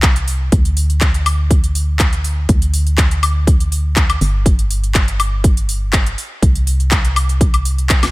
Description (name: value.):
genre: piano house.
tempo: 122 BPM.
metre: 4/4.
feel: straight.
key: unclear.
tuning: A4 = 440 Hz.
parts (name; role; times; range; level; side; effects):
organ-like FM bass; bass; 0.0-8.1 s; G1 to D2; -16 LUFS; equal; sidechain pumping.
electronic kick drum; drums; 0.0-8.0 s; none; -14 LUFS; equal; none.
house drum kit; drums; 0.0-8.1 s; handclaps, hi-hat, snare drum, woodblock; -19 LUFS; left 1 dB; none.
room: digital ambience.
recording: none.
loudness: -13 LUFS.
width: side -20 dB against mid.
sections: 0.0-8.1 A section.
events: none.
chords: none.